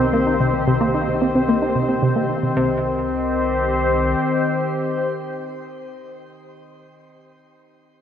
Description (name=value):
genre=ambient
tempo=111 BPM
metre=4/4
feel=straight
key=C minor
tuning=A4 = 438 Hz
part: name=evolving wavetable pad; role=sustained chords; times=0.0-6.3 s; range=Eb3 to C5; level=-20 LUFS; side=left 2 dB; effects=chorus, built-in reverb, shimmer reverb
part: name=analog pluck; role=riff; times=0.0-2.8 s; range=C3 to Eb4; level=-20 LUFS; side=equal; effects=chorus, phaser, tape echo, shimmer reverb
part: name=warm sub bass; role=bass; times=0.0-4.1 s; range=C2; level=-30 LUFS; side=equal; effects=none
room=wet spring reverb, RT60 2.6 s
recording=echo-heavy mix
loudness=-17 LUFS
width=side -9 dB against mid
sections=0.0-2.6 A section; 2.6-6.9 B section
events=fade-out on sub bass 0.0-2.6; filter sweep on synth arpeggio sound 0.0-2.6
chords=0.0 Cm